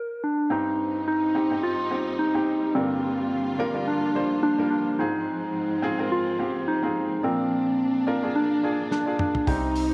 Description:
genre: piano-driven pop.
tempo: 107 BPM.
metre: 4/4.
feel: swing 56% on 16ths.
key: C minor.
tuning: A4 = 443 Hz.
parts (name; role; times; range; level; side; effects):
soft struck synth lead; melody; 0.0-9.9 s; C4 to Bb4; -27 LUFS; equal; chorus.
warm upright piano; accompaniment; 0.5-9.9 s; G2 to C5; -31 LUFS; equal; none.
dark studio string section; sustained chords; 0.5-9.9 s; Ab2 to F4; -38 LUFS; equal; none.
damped 70s drum kit; drums; 8.9-9.9 s; hi-hat, kick drum, snare drum, toms; -32 LUFS; equal; none.
vintage muted fingered electric bass; bass; 9.5-9.9 s; C2; -32 LUFS; equal; none.
room: moderate echo chamber reverb, RT60 2.2 s.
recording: none.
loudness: -25 LUFS.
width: mono.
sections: 0.5-9.9 A section.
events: stop 0.0-0.5; drum fill 8.9-9.5.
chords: 0.0 N.C.; 0.5 Cm; 2.8 Gm7; 5.0 Fm/Ab; 7.2 Bb.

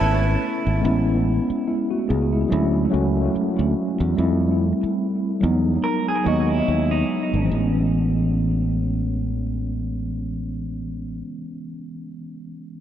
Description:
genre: R&B.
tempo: 72 BPM.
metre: 4/4.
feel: swing 56% on 16ths.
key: A major.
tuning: A4 = 440 Hz.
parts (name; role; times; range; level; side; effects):
clean electric guitar; second line; 0.0-0.8, 5.8-7.5 s; D#4 to Bb4; -27 LUFS; right 3 dB; tape echo.
mellow tine electric piano; accompaniment; 0.0-12.8 s; E3 to D#5; -22 LUFS; equal; medium stereo tremolo, tape echo.
string machine, full ensemble; sustained chords; 0.0-0.8 s; C#4 to A5; -33 LUFS; left 2 dB; phaser, ensemble chorus.
fingered electric bass; bass; 0.0-11.2 s; G#1 to F2; -22 LUFS; equal; none.
room: light reverb.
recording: echo-heavy mix.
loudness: -19 LUFS.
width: side -10 dB against mid.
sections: 0.8-7.5 A section; 7.5-10.8 B section.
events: none.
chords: 0.0 Amaj9; 2.5 Dmaj9; 4.2 Fmaj9; 5.4 Emaj9; 7.5 Amaj9.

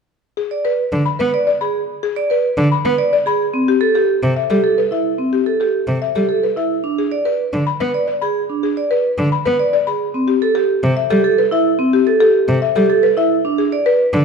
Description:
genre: classical, minimalist pattern music.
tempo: 109 BPM.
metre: 3/4.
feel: straight.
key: unclear.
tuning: A4 = 438 Hz.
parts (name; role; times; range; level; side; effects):
buzzing marimba with medium hard mallets; melody; 0.4-14.0 s; G4 to B5; -20 LUFS; left 9 dB; none.
vibraphone with medium mallets; arpeggios; 0.5-14.0 s; C4 to D5; -16 LUFS; right 4 dB; none.
rich cello; accompaniment; 0.9-14.2 s; C3 to B3; -19 LUFS; equal; none.
room: moderate recital hall reverb, RT60 1.8 s.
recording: dark, warm production.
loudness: -14 LUFS.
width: side -5 dB against mid.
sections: 0.1-14.2 A section.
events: none.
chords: 0.1 G#dim/D; 3.4 Am7; 6.7 G#dim/D (rootless); 10.0 Am7; 13.3 G#dim/D (rootless).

